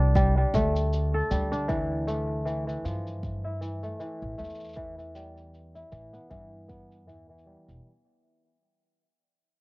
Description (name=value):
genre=folktronica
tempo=78 BPM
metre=4/4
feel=swing 56% on 16ths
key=unclear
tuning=A4 = 435 Hz
part: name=kora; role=arpeggios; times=0.0-8.5 s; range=E3 to A4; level=-31 LUFS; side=equal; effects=vintage 12-bit sampler grit, low-pass filter, cassette tape, analog delay
part: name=upright bass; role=bass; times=0.0-7.8 s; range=E1 to A2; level=-28 LUFS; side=equal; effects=none
part: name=electronic kick drum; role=drums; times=0.2-6.9 s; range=none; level=-30 LUFS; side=equal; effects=none
part: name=shaker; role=drums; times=0.2-7.8 s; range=none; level=-50 LUFS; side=equal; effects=low-pass filter on perc, low-pass filter on room
room=light reverb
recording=home recording on cassette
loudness=-26 LUFS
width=side -24 dB against mid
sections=0.0-7.8 A section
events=fade-out 0.0-7.8; filter sweep on kora 0.0-7.8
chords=0.0 Gsus2; 1.7 Dmadd9; 4.8 Em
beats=0.15 0.92 | 1.69 2.46 3.23 4.00 | 4.77 5.54 6.31 7.08